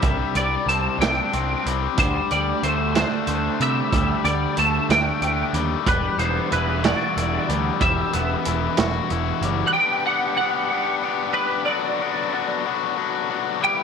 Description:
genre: indie rock.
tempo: 62 BPM (dotted quarters).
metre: 6/8.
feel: straight.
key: G major.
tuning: A4 = 441 Hz.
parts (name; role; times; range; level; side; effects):
twelve-string electric guitar; melody; 0.0-13.8 s; B4 to A5; -24 LUFS; right 1 dB; ensemble chorus.
biting overdriven guitar; riff; 0.0-13.8 s; F#3 to G4; -24 LUFS; left 12 dB; none.
raw garage guitar; riff; 0.0-9.8 s; E2 to G4; -29 LUFS; right 15 dB; overdrive, lush chorus.
fuzz picked electric bass; bass; 0.0-9.6 s; E1 to C3; -26 LUFS; right 1 dB; overdrive.
vintage drum kit; drums; 0.0-9.6 s; hi-hat, kick drum, snare drum; -24 LUFS; right 4 dB; none.
combo organ; sustained chords; 9.7-13.8 s; G3 to B5; -33 LUFS; right 12 dB; none.
room: small room ambience.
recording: 1960s-style stereo with parts hard left and right.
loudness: -19 LUFS.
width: side -6 dB against mid.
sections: 0.0-9.8 A section; 9.8-13.8 B section.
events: none.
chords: 0.0 Csus2; 2.0 Gsus2/D; 5.9 Emadd9; 9.8 Gmaj7; 11.7 Bm7.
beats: | 0.03 1.00 | 1.98 2.95 | 3.92 4.90 | 5.87 6.84 | 7.81 8.78 | 9.75 10.72 | 11.69 12.66 | 13.62.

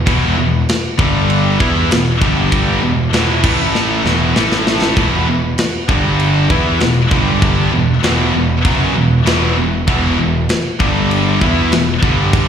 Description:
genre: hard rock.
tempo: 98 BPM.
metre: 4/4.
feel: straight.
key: E minor.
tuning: A4 = 440 Hz.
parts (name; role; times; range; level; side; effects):
overdriven tonewheel organ; sustained chords; 0.0-12.5 s; E3 to B4; -29 LUFS; left 1 dB; none.
fuzz picked electric bass; bass; 0.0-12.5 s; E1 to E2; -18 LUFS; equal; overdrive.
distorted electric guitar; riff; 0.1-12.5 s; E2 to E4; -20 LUFS; right 9 dB; overdrive.
scooped high-gain guitar; riff; 0.1-12.5 s; E2 to E4; -19 LUFS; left 10 dB; distortion.
scooped high-gain guitar; riff; 0.1-12.5 s; E2 to E4; -18 LUFS; right 1 dB; distortion, slapback echo.
tight metal drum kit; drums; 0.1-12.5 s; crash cymbal, kick drum, snare drum; -18 LUFS; equal; none.
room: light reverb, studio reverb.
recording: live gig heard through the venue's PA, recital hall reverb.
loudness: -12 LUFS.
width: side -8 dB against mid.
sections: 0.0-12.5 A section.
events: drum fill 3.7-5.0.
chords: 0.0 E5; 1.0 G5; 1.6 E5; 2.2 G5; 2.8 E5; 3.4 A5; 4.0 E5; 4.4 A5; 5.0 E5; 5.9 G5; 6.5 E5; 7.1 G5; 7.7 E5; 10.8 G5; 11.4 E5.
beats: | 0.06 0.67 1.28 1.90 | 2.51 3.13 3.74 4.35 | 4.97 5.58 6.19 6.81 | 7.42 8.04 8.65 9.26 | 9.88 10.49 11.11 11.72 | 12.33.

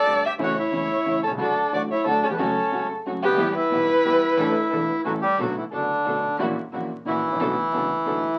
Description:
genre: tango.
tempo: 180 BPM.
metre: 3/4.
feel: rubato.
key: unclear.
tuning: A4 = 438 Hz.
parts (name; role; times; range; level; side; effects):
bandoneon; melody; 0.0-8.4 s; D3 to A5; -26 LUFS; equal; none.
warm violin; second line; 0.0-5.0 s; G4 to E5; -25 LUFS; equal; none.
muted symphonic string section; stabs; 0.0-8.2 s; A3 to A4; -35 LUFS; equal; none.
warm concert grand piano; accompaniment; 0.1-8.2 s; E1 to A4; -31 LUFS; equal; none.
upright bass; bass; 0.1-8.2 s; E1 to E2; -45 LUFS; equal; none.
room: moderate small room reverb, RT60 0.5 s.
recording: very old 78 rpm record, vinyl crackle.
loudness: -23 LUFS.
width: mono.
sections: 0.0-5.4 A section; 5.4-8.4 B section.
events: none.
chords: 0.4 A; 1.4 D; 2.4 F#m; 3.4 Em; 4.4 Asus4; 5.1 A; 5.4 Bm7; 6.4 F#7/A#; 7.4 Bm7.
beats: 0.06 | 0.40 0.73 1.06 | 1.40 1.73 2.07 | 2.40 2.73 3.06 | 3.40 3.72 4.05 | 4.38 4.71 5.05 | 5.39 5.73 6.07 | 6.40 6.74 7.07 | 7.40 7.73 8.06.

